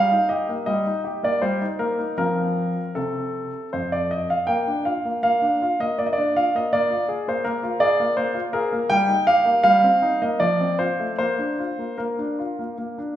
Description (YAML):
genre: classical-period piano sonatina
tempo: 80 BPM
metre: 3/4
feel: uneven beats, rubato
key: Bb major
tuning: A4 = 443 Hz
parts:
  - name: clear baby grand piano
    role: solo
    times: 0.0-13.2 s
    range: F2 to G5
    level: -20 LUFS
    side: equal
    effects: none
room: wet recital hall reverb, RT60 1.7 s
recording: heard from further back in the room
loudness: -20 LUFS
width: side -11 dB against mid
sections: 0.0-13.2 A section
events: none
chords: 0.0 Eb/G; 2.2 F; 4.5 Bb; 6.7 Bb5; 8.9 Eb/G; 9.7 Cm7/G; 10.4 F; 11.2 Bb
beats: 0.67 1.42 | 2.19 2.96 3.73 | 4.49 5.24 5.99 | 6.73 7.46 8.18 | 8.91 9.66 10.41 | 11.20 12.00 12.80